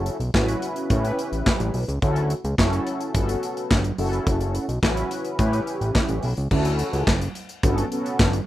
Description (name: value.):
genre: early-eighties boogie funk.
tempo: 107 BPM.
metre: 4/4.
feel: straight.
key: D major.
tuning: A4 = 440 Hz.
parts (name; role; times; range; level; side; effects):
mellow synth brass; accompaniment; 0.0-8.4 s; B3 to B4; -26 LUFS; equal; chorus.
fat analog bass; bass; 0.0-8.4 s; F#1 to A2; -24 LUFS; equal; none.
modern studio drum kit; drums; 0.1-8.5 s; crash cymbal, handclaps, hi-hat, kick drum, snare drum; -23 LUFS; equal; none.
room: light reverb.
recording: rough home demo mix.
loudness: -21 LUFS.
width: side -14 dB against mid.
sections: 0.0-6.5 A section; 6.5-8.5 B section.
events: none.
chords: 0.0 F#m7; 0.9 A9; 2.0 Dmaj7; 3.1 Gmaj9#11; 4.0 F#m7; 5.4 A9; 6.5 Dmaj7; 7.6 Gmaj9#11.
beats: 0.34 0.90 1.46 | 2.02 2.58 3.15 3.71 | 4.27 4.83 5.39 5.95 | 6.51 7.07 7.63 8.19.